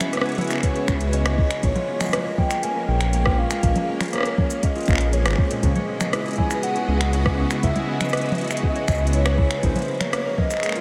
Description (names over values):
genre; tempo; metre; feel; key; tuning
IDM; 120 BPM; 4/4; straight; unclear; A4 = 440 Hz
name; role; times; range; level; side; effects
soft string machine; sustained chords; 0.0-10.8 s; Db3 to Eb5; -30 LUFS; equal; ensemble chorus
concert harp; arpeggios; 0.0-10.8 s; Bb2 to Db5; -32 LUFS; equal; vintage 12-bit sampler grit, delay
booming analog drum machine; drums; 0.0-10.8 s; congas, finger snaps, hi-hat, rim click, shaker; -28 LUFS; equal; none
warbly nostalgic lead; melody; 0.1-10.8 s; Cb5 to Ab5; -30 LUFS; equal; lush chorus, analog delay
electronic kick drum; drums; 0.6-10.5 s; none; -24 LUFS; equal; none
dark detuned saw bass; bass; 0.9-9.7 s; Ab1 to Db2; -24 LUFS; equal; tube saturation
room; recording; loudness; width
moderate huge ambient reverb, RT60 7.9 s; dreamy mix soaked in reverb; -22 LUFS; mono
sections
0.0-10.8 A section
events
none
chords
0.0 Dbm11; 1.6 Bbm11; 5.6 Dbm11; 9.6 Bbm11